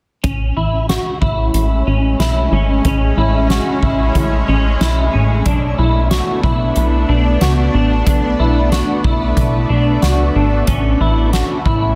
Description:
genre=dream pop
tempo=92 BPM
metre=4/4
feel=straight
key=A major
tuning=A4 = 437 Hz
part: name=shimmering ambient pad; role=sustained chords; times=1.1-12.0 s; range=G#3 to D4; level=-22 LUFS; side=equal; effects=chorus, built-in reverb, shimmer reverb
part: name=semi-hollow electric guitar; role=arpeggios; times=0.2-12.0 s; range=C#4 to F#4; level=-22 LUFS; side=equal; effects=ensemble chorus, digital delay, shimmer reverb
part: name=plucky analog bass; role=bass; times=0.2-11.9 s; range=G#1 to C#2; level=-18 LUFS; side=equal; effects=none
part: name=soft-mallet drum kit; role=drums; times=0.2-11.8 s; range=hi-hat, kick drum, snare drum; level=-22 LUFS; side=equal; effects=none
room=light reverb, studio reverb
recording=dense, heavily limited modern master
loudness=-15 LUFS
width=mono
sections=0.2-12.0 A section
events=none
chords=0.2 Amaj7; 5.5 Bm7; 10.7 Amaj7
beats=| 0.24 0.89 1.54 2.20 | 2.85 3.50 4.15 4.80 | 5.46 6.11 6.76 7.41 | 8.06 8.72 9.37 10.02 | 10.67 11.33

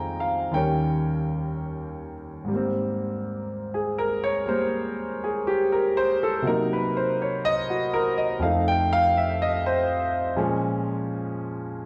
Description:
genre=solo jazz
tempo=61 BPM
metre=4/4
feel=swing 66% on 8ths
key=Ab major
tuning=A4 = 440 Hz
part: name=warm grand piano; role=solo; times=0.0-11.9 s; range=Eb2 to Bb5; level=-25 LUFS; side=equal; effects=none
room=wet large studio reverb, RT60 1.4 s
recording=band playing live in one room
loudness=-25 LUFS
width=mono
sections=0.0-2.5 A section; 2.5-11.9 B section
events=grand piano solo 2.5-11.9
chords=0.0 Fm9; 0.5 Eb7; 2.5 Abmaj9; 6.4 Cm7b5; 8.4 F7; 10.4 Bbm7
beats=0.52 1.51 | 2.49 3.48 4.46 5.45 | 6.43 7.42 8.40 9.38 | 10.37 11.35

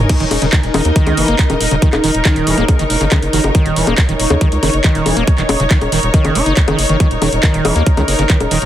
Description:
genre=psychedelic trance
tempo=139 BPM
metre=4/4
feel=straight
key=Eb minor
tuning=A4 = 441 Hz
part: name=bubbling stepped-filter texture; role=sustained chords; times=0.0-8.7 s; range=Eb4 to Db5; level=-20 LUFS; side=equal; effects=chorus, built-in reverb, vintage 12-bit sampler grit, sidechain pumping
part: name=round analog bass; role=bass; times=0.0-8.7 s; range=Eb1 to Eb2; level=-18 LUFS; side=equal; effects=none
part: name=warm symphonic string section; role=texture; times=0.0-8.7 s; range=Eb4 to Ab5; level=-22 LUFS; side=left 1 dB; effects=sidechain pumping
part: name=drum and bass drum kit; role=drums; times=0.1-8.7 s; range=bongos, crash cymbal, handclaps, hi-hat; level=-18 LUFS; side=left 2 dB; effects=none
part: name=electronic kick drum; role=drums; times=0.1-8.4 s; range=none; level=-12 LUFS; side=equal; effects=none
part: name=overdriven acid bass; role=riff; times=0.2-8.6 s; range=Db3 to Fb4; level=-19 LUFS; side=right 1 dB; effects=distortion, auto-pan, sidechain pumping, ping-pong delay
part: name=formant-sweep wobble bass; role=second line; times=1.2-3.5, 8.1-8.3 s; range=Gb3 to Bb3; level=-29 LUFS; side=right 3 dB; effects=none
room=light reverb, digital ambience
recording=heavily compressed radio sound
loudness=-11 LUFS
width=side -12 dB against mid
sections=0.0-8.7 A section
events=none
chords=0.0 Eb5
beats=| 0.10 0.53 0.96 1.39 | 1.82 2.25 2.69 3.12 | 3.55 3.98 4.41 4.84 | 5.28 5.71 6.14 6.57 | 7.00 7.43 7.87 8.30

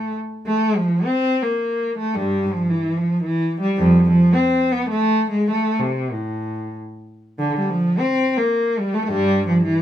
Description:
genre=classical, baroque-style suite movement for unaccompanied cello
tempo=91-112 BPM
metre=3/4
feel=rubato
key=A minor from 3.8 s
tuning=A4 = 440 Hz
part: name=warm cello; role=solo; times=0.0-9.8 s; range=F2 to C4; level=-17 LUFS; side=equal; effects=none
room=light reverb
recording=minimal, uncompressed stereo recording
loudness=-17 LUFS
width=side -11 dB against mid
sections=0.0-7.4 A section; 7.4-9.8 A section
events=none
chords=none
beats=| 0.46 1.04 1.60 | 2.15 2.69 3.23 | 3.78 4.33 4.89 | 5.50 6.12 6.75 | 7.39 7.99 8.55 | 9.11 9.65

